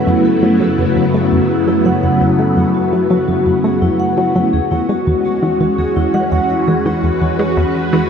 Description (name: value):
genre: ambient, sequencer-driven space music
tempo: 84 BPM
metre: 4/4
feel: straight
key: F# minor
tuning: A4 = 440 Hz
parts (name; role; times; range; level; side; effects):
- phased string machine; sustained chords; 0.0-8.1 s; C#3 to B4; -15 LUFS; equal; ensemble chorus, phaser
- analog drone; bass; 0.0-8.1 s; E2 to F#2; -26 LUFS; right 1 dB; chorus, tube saturation
- pulsing gated texture; texture; 0.0-8.1 s; F#4 to F#5; -23 LUFS; equal; chorus, built-in reverb
- vibraphone with soft mallets; arpeggios; 0.1-8.0 s; E4 to F#5; -19 LUFS; left 3 dB; auto-pan, ping-pong delay
- plucky analog bass; riff; 0.1-8.0 s; E2 to A3; -18 LUFS; right 1 dB; ping-pong delay
room: wet cathedral reverb, RT60 5.3 s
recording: in a vast, echoing space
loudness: -12 LUFS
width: side -7 dB against mid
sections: 0.0-8.1 A section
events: none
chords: 0.0 F#m; 4.5 E